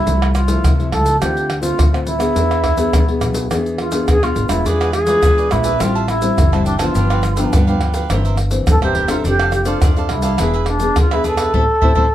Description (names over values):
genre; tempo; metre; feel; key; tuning
samba and choro; 105 BPM; 4/4; straight; unclear; A4 = 440 Hz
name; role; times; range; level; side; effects
baroque flute; melody; 0.0-12.1 s; D4 to A4; -19 LUFS; right 1 dB; plate reverb
nylon-string guitar; accompaniment; 0.0-12.1 s; G2 to A4; -21 LUFS; left 3 dB; none
upright bass; bass; 0.1-12.1 s; E1 to E3; -20 LUFS; equal; none
egg shaker, surdo, pandeiro and tamborim; percussion; 0.1-12.1 s; none; -18 LUFS; equal; none
cavaquinho; accompaniment; 4.7-12.1 s; D4 to A5; -25 LUFS; right 6 dB; none
room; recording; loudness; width
moderate studio reverb, RT60 0.6 s; none; -13 LUFS; side -12 dB against mid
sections
0.0-12.1 A section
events
band accent 11.5-12.1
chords
0.1 Fmaj7/C; 1.2 Dm7; 2.4 E7; 4.7 E7b9; 5.8 Am7; 7.0 G7; 8.1 C7/G; 9.2 F6; 10.4 E7; 11.5 Am